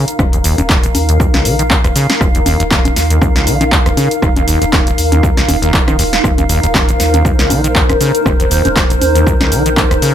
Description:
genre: acid house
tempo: 119 BPM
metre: 4/4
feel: swing 56% on 16ths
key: unclear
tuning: A4 = 440 Hz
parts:
  - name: deep acid bass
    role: riff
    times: 0.0-10.1 s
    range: Eb1 to Eb3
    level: -16 LUFS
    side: equal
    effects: vintage 12-bit sampler grit
  - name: granular cloud pad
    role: texture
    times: 0.0-10.1 s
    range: Eb4 to F5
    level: -16 LUFS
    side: equal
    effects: built-in reverb, sidechain pumping
  - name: punchy analog drum machine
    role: drums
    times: 0.1-10.1 s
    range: congas, handclaps, hi-hat, rim click, shaker, snare drum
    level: -16 LUFS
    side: equal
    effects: none
  - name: warm sub bass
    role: bass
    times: 0.2-10.0 s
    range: Eb1 to Eb2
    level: -18 LUFS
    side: equal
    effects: sidechain pumping
  - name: electronic kick drum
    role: drums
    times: 0.2-9.9 s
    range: none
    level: -14 LUFS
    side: equal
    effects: none
room: light reverb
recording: none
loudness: -10 LUFS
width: side -10 dB against mid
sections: 0.0-10.1 A section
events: none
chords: 0.0 Eb5

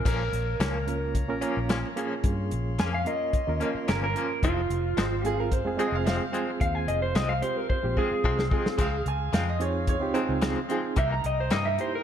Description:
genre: straight-eighth soul blues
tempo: 110 BPM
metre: 4/4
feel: straight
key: F minor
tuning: A4 = 439 Hz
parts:
  - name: electric guitar through a small old amp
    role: melody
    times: 0.0-12.0 s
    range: F4 to Bb5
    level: -29 LUFS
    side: right 2 dB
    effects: none
  - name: barky reed electric piano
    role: accompaniment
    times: 0.0-12.0 s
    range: Ab3 to Bb4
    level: -31 LUFS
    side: right 4 dB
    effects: overdrive, fast tremolo
  - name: warm horn section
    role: sustained chords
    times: 0.0-12.0 s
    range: Ab4 to C6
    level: -41 LUFS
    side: left 3 dB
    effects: none
  - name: vintage muted fingered electric bass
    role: bass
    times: 0.0-11.8 s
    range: F1 to G2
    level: -31 LUFS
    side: left 1 dB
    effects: none
  - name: direct-recorded clean electric guitar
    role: stabs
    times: 0.1-11.7 s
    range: F2 to D#4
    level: -34 LUFS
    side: left 5 dB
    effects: tremolo
  - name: warm soul drum kit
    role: drums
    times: 0.1-11.9 s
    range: crash cymbal, hi-hat, kick drum, snare drum, splash cymbal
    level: -29 LUFS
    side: equal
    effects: none
  - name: bright upright piano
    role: second line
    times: 5.2-10.4 s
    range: G4 to Ab5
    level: -33 LUFS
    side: right 4 dB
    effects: none
room: light reverb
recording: none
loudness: -24 LUFS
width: side -9 dB against mid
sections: 0.0-12.0 A section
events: drum fill 7.7-8.8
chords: 0.1 Bbm; 4.4 Fm; 8.8 Dbmaj7; 11.0 C7#9

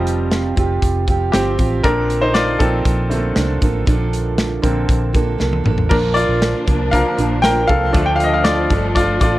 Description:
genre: piano-driven pop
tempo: 118 BPM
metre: 4/4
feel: straight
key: unclear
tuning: A4 = 441 Hz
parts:
  - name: bright baby grand piano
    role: accompaniment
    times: 0.0-9.4 s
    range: D3 to G5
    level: -19 LUFS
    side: left 1 dB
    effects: none
  - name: fingerpicked steel-string acoustic guitar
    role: riff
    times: 0.0-9.4 s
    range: Bb2 to Bb4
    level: -22 LUFS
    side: right 5 dB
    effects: none
  - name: vintage muted fingered electric bass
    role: bass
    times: 0.0-9.4 s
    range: F1 to D2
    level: -20 LUFS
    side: equal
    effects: none
  - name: modern studio drum kit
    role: drums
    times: 0.1-9.3 s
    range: crash cymbal, hi-hat, kick drum, snare drum, toms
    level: -19 LUFS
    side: equal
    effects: none
  - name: rich studio string section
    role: sustained chords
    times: 5.9-9.4 s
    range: F3 to D4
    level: -25 LUFS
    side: left 3 dB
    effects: none
room: little or no reverb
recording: worn, warbling old tape, cassette tape, warbly pitch drift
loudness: -14 LUFS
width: side -16 dB against mid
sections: 0.0-5.9 A section; 5.9-9.4 B section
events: grand piano solo 0.0-5.9, 5.9-9.4; drum fill 5.4-5.9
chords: 0.0 Fsus2; 1.8 Bbmaj7; 5.9 Bb; 7.9 Dm

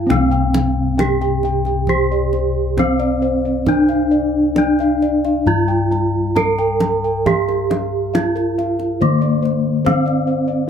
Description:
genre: Javanese gamelan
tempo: 67 BPM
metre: 4/4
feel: straight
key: C slendro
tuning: A4 = 440 Hz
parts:
  - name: gamelan-type bronze metallophone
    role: melody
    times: 0.0-10.7 s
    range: Bb3-45c to Bb4-45c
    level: -17 LUFS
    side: right 1 dB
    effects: none
  - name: gamelan-type bossed gongs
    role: bass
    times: 0.0-10.7 s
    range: C2 to G4+25c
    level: -20 LUFS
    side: left 3 dB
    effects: none
  - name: gamelan-type bossed gongs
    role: arpeggios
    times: 0.1-10.7 s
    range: Bb4-45c to Bb5-45c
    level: -24 LUFS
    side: left 3 dB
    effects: none
  - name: kendang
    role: percussion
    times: 0.1-10.2 s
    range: none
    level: -23 LUFS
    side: right 1 dB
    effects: none
room: light reverb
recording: none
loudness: -15 LUFS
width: side -8 dB against mid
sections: 0.1-10.7 A section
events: none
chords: none

